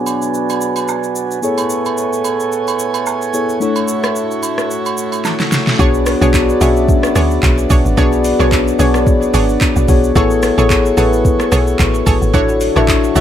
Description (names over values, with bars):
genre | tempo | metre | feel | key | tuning
amapiano | 110 BPM | 4/4 | swing 55% on 16ths | B dorian | A4 = 440 Hz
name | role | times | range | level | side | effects
mellow tine electric piano | accompaniment | 0.0-13.2 s | A3 to E5 | -16 LUFS | left 3 dB | analog chorus, low-pass filter
pedal harmonium | sustained chords | 0.0-13.2 s | A2 to G#5 | -20 LUFS | right 4 dB | sidechain pumping, low-pass filter
smooth R&B drum kit | drums | 0.1-13.2 s | handclaps, hi-hat, kick drum, rim click, shaker, snare drum | -17 LUFS | equal | none
agogo bells and woodblock | percussion | 0.1-5.4 s | none | -24 LUFS | right 7 dB | none
analog pluck | stabs | 5.8-13.2 s | D4 to C#5 | -22 LUFS | right 5 dB | chorus, tape echo
woody log drum bass | bass | 5.8-13.2 s | G#1 to D2 | -16 LUFS | equal | none
room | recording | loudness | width
light reverb, digital ambience | none | -12 LUFS | side -10 dB against mid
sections
0.0-5.8 A section; 5.8-13.2 B section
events
filter sweep 0.0-5.8; drum fill 5.2-5.8; drop 5.8-13.2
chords
0.0 Bm69; 1.4 Amaj7; 3.6 Dmaj7/A; 5.8 Bm69; 10.2 Amaj7; 12.3 Dmaj7/A